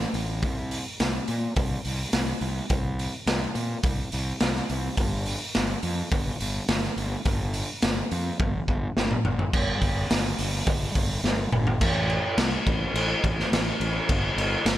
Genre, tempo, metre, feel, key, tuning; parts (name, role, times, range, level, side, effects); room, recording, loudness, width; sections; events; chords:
quiet-loud alternative rock; 105 BPM; 4/4; straight; A4 = 440 Hz
fuzz fingered electric bass; bass; 0.0-14.8 s; G1 to Bb2; -29 LUFS; equal; overdrive
raw garage drum kit; drums; 0.0-14.8 s; crash cymbal, hi-hat, kick drum, snare drum, toms; -25 LUFS; equal
light reverb; -24 LUFS; side -13 dB against mid
0.0-9.5 A section; 9.5-11.8 B section; 11.8-14.8 C section
drum fill 8.4-9.5, 11.2-11.8